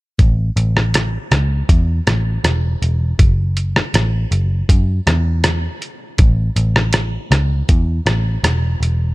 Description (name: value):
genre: indie pop, bedroom pop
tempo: 80 BPM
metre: 4/4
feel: straight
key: A major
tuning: A4 = 442 Hz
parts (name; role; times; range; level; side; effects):
- vintage muted picked electric bass; bass; 0.2-9.1 s; E1 to F#2; -16 LUFS; equal; none
- lo-fi sampler-style drum kit; drums; 0.2-9.0 s; hi-hat, kick drum, rim click; -16 LUFS; equal; overdrive
room: digital ambience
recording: none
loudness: -14 LUFS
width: side -21 dB against mid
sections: 0.2-9.1 A section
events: none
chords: none